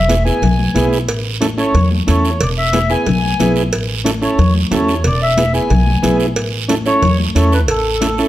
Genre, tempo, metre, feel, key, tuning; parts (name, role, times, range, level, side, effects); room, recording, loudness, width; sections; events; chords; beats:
latin, cumbia; 182 BPM; 4/4; straight; A major; A4 = 441 Hz
mellow accordion; melody; 0.0-8.3 s; A4 to G#5; -19 LUFS; left 1 dB
upright bass; bass; 0.0-8.2 s; E1 to E2; -17 LUFS; equal
combo organ; accompaniment; 0.1-8.3 s; B3 to A4; -19 LUFS; right 2 dB
congas; percussion; 0.1-8.2 s; -20 LUFS; left 4 dB
cowbell and timbales; percussion; 0.1-8.2 s; -24 LUFS; right 3 dB
guiro; percussion; 0.1-8.3 s; -26 LUFS; right 8 dB
moderate large studio reverb, RT60 1.4 s; -12 LUFS; side -14 dB against mid
0.0-8.3 A section
0.0 E; 1.1 A; 2.4 E; 3.7 A; 5.0 E; 6.4 A
0.09 0.42 0.75 | 1.08 1.42 1.75 2.08 | 2.41 2.74 3.07 3.40 | 3.73 4.06 4.39 4.72 | 5.05 5.38 5.71 6.04 | 6.37 6.70 7.03 7.36 | 7.69 8.02